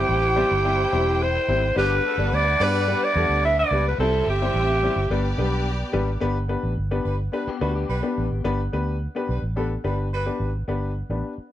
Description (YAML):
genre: soul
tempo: 108 BPM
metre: 4/4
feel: straight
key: G major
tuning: A4 = 439 Hz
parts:
  - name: growling alto saxophone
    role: melody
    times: 0.0-5.4 s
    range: G4 to E5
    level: -21 LUFS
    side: right 1 dB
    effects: none
  - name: rich studio string section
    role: second line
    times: 0.0-6.2 s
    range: B3 to G5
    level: -31 LUFS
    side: equal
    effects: none
  - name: warm upright piano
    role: accompaniment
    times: 0.0-11.3 s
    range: G3 to C5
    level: -27 LUFS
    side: left 4 dB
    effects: none
  - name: vintage muted fingered electric bass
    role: bass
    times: 0.0-11.4 s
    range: E1 to G2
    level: -25 LUFS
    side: right 1 dB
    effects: none
  - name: warm horn section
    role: second line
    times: 1.8-3.1, 7.1-10.5 s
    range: D3 to D5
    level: -31 LUFS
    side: right 2 dB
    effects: none
  - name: electric guitar through a small old amp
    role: riff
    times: 7.5-8.4 s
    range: A3 to G4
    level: -32 LUFS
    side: left 7 dB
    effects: ensemble chorus
room: light reverb, studio ambience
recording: none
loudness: -20 LUFS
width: side -12 dB against mid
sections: 0.0-6.2 A section; 6.2-10.7 B section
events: none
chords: 0.0 C; 1.8 G; 4.0 C; 5.1 G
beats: 0.09 0.65 1.21 | 1.76 2.32 2.88 3.44 | 3.99 4.55 5.11 5.66 | 6.22 6.78 7.33 7.89 | 8.45 9.01 9.57 10.13 | 10.69 11.25